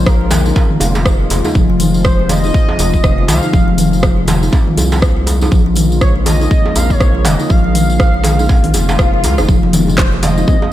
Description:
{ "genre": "afro house", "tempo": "121 BPM", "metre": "4/4", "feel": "swing 59% on 16ths", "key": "F minor", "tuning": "A4 = 440 Hz", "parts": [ { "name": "expressive portamento lead", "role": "melody", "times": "0.0-10.7 s", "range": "Bb4 to F5", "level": "-22 LUFS", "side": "equal", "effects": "analog chorus, analog delay" }, { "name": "warm analog pad", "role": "sustained chords", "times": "0.0-10.7 s", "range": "C3 to F4", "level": "-22 LUFS", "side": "left 2 dB", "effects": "chorus, sidechain pumping" }, { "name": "round analog bass", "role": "bass", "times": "0.0-10.4 s", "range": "F1 to Db2", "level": "-16 LUFS", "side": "equal", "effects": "sidechain pumping" }, { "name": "kalimba", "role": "arpeggios", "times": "0.1-10.6 s", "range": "Eb3 to F4", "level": "-19 LUFS", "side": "equal", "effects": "sidechain pumping, analog delay" }, { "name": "afro-pop drum kit", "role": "drums", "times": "0.1-10.3 s", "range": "handclaps, hi-hat, rim click, toms", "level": "-18 LUFS", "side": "equal", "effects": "overdrive" }, { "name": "electronic kick drum", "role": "drums", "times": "0.1-10.6 s", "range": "none", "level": "-12 LUFS", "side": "equal", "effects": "none" }, { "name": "djembe", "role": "percussion", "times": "0.1-10.7 s", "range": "none", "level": "-22 LUFS", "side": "right 2 dB", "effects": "none" }, { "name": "tambourine", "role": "percussion", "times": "0.1-10.6 s", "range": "none", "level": "-27 LUFS", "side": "left 2 dB", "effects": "none" }, { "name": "swell", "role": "sound effects", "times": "8.7-9.5 s", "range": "none", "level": "-22 LUFS", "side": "left 4 dB", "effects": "none" }, { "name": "congas", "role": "percussion", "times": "9.6-10.6 s", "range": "none", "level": "-22 LUFS", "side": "left 4 dB", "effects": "none" } ], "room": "light reverb, digital ambience", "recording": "none", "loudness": "-10 LUFS", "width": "side -13 dB against mid", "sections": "0.0-10.7 A section", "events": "swell 8.7-9.5", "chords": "0.0 Bbm7; 1.6 Fm; 5.5 Bbm7; 9.5 Fm", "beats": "0.06 0.56 1.05 | 1.55 2.05 2.54 3.04 | 3.53 4.03 4.53 5.02 | 5.52 6.01 6.51 7.01 | 7.50 8.00 8.49 8.99 | 9.48 9.98 10.48" }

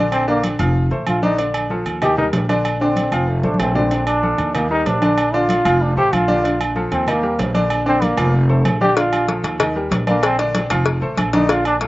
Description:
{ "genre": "latin, salsa", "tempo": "190 BPM", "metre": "4/4", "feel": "straight", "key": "Bb major", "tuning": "A4 = 445 Hz", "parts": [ { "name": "bright baby grand piano", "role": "accompaniment", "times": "0.0-11.9 s", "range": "D3 to F5", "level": "-21 LUFS", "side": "equal", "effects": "none" }, { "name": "upright bass", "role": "bass", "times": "0.0-11.9 s", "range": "F1 to Eb2", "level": "-21 LUFS", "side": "equal", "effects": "none" }, { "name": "bright trombone", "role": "melody", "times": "0.1-11.8 s", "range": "A3 to G4", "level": "-19 LUFS", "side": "equal", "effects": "slapback echo" }, { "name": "agogo bells and timbales", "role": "percussion", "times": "0.1-11.8 s", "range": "none", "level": "-25 LUFS", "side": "right 3 dB", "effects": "none" }, { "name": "congas", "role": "percussion", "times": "0.1-11.9 s", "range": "none", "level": "-25 LUFS", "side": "equal", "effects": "none" }, { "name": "cowbell", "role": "percussion", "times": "9.0-11.9 s", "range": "none", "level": "-22 LUFS", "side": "left 4 dB", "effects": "slapback echo" } ], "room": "little or no reverb", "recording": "recorded outdoors, with no room sound, nothing above 7.8 kHz", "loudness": "-15 LUFS", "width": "side -18 dB against mid", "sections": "0.0-11.9 A section", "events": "trombone solo 0.0-11.9; drum fill 3.4-3.9", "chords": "0.1 Bb; 0.8 F; 1.4 Bbmaj7; 2.0 Eb; 2.6 Bbadd9; 3.3 F; 3.9 Bbmaj7; 4.5 Eb; 5.2 Bb; 5.8 F; 6.4 Bbmaj7; 7.1 Eb; 7.7 Bb; 8.3 F; 9.0 Bbmaj7; 9.6 Eb; 10.2 Bb; 10.9 F", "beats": "| 0.12 0.43 0.75 1.07 | 1.38 1.70 2.01 2.33 | 2.65 2.96 3.28 3.59 | 3.91 4.23 4.54 4.86 | 5.17 5.49 5.81 6.12 | 6.44 6.75 7.07 7.39 | 7.70 8.02 8.34 8.65 | 8.97 9.28 9.60 9.92 | 10.23 10.55 10.86 11.18 | 11.49 11.81" }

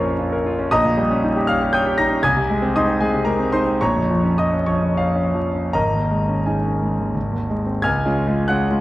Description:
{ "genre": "classical, romantic character piece for solo piano", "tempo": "74-119 BPM", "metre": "3/4", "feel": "rubato", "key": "unclear", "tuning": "A4 = 440 Hz", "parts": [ { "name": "clear concert grand piano", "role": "solo", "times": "0.0-8.8 s", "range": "Ab1 to Bb6", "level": "-17 LUFS", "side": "equal", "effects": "none" } ], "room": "moderate scoring stage reverb, RT60 1.7 s", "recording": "dark, warm production, vinyl crackle", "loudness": "-17 LUFS", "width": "side -16 dB against mid", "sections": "0.0-7.8 A section", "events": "none", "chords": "0.0 Bbm; 0.7 Eb7/Bb; 2.2 Ab/C; 3.8 Bbm; 5.7 Absus4; 7.1 Ab; 7.8 Db", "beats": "0.18 | 0.71 1.22 1.73 | 2.24 2.76 3.27 | 3.81 4.37 4.97 | 5.73 6.46 7.15 | 7.83 8.49" }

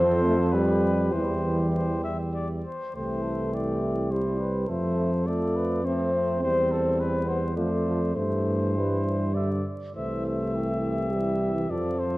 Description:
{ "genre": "classical, brass quintet", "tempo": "103 BPM", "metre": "3/4", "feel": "rubato", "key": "C major", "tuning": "A4 = 441 Hz", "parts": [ { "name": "mellow trumpet", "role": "melody", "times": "0.0-12.2 s", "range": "A4 to E5", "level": "-33 LUFS", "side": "left 2 dB", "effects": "none" }, { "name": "mellow flugelhorn", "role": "second line", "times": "0.0-12.2 s", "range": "E4 to E5", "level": "-34 LUFS", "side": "right 3 dB", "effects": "none" }, { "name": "clear trombone", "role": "accompaniment", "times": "0.0-12.2 s", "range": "D3 to A3", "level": "-34 LUFS", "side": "right 1 dB", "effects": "none" }, { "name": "mellow French horn", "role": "accompaniment", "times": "0.0-12.2 s", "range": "E3 to C4", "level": "-28 LUFS", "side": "left 1 dB", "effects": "none" }, { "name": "warm bass trombone", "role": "bass", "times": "0.0-12.2 s", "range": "C2 to G2", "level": "-28 LUFS", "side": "equal", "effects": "none" } ], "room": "moderate concert hall reverb, RT60 1.9 s", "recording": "worn, warbling old tape, cassette tape, vinyl crackle, warbly pitch drift", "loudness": "-24 LUFS", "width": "side -19 dB against mid", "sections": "0.0-3.0 A section; 3.0-12.2 A section", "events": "none", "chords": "0.0 F; 0.5 G7/F; 1.1 C/E; 3.0 C; 4.7 F; 6.4 C/E; 7.6 F; 8.2 C/G; 9.4 G5; 10.0 C", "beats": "0.54 | 1.14 1.75 2.36 | 2.96 3.54 4.12 | 4.70 5.27 5.85 | 6.43 7.00 7.57 | 8.16 8.77 9.36 | 9.96 10.55 11.12 | 11.69" }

